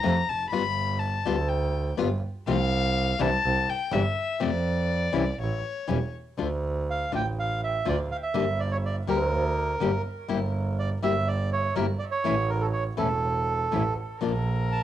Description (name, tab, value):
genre	tango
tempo	123 BPM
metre	4/4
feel	rubato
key	F major, D harmonic minor from 6.4 s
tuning	A4 = 440 Hz
part	rich violin	second line	0.0-6.1, 14.2-14.8 s	Bb4 to B5	-29 LUFS	left 6 dB	cassette tape
part	nylon-string guitar	accompaniment	0.0-14.3 s	C3 to G4	-28 LUFS	left 7 dB	cassette tape
part	clear double bass	bass	0.0-14.8 s	E1 to F2	-27 LUFS	right 2 dB	none
part	bandoneon	melody	6.9-14.8 s	A4 to A5	-29 LUFS	right 3 dB	cassette tape, tape echo
room	moderate studio reverb, RT60 0.6 s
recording	home recording on cassette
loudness	-24 LUFS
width	side -11 dB against mid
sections	0.0-6.4 A section; 6.4-14.8 B section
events	violin solo 0.0-6.4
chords	0.0 F; 0.5 G7; 2.5 F/C; 3.4 Cadd9; 4.4 F5; 5.4 A; 6.4 Dm; 8.3 Gm; 10.3 Edim/G; 12.3 A; 14.2 Bb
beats	0.05 | 0.53 1.02 1.51 1.99 | 2.47 2.96 3.44 3.92 | 4.41 4.89 5.38 5.88 | 6.38 6.88 7.37 7.86 | 8.35 8.84 9.33 9.81 | 10.30 10.79 11.28 11.76 | 12.25 12.75 13.24 13.73 | 14.23 14.73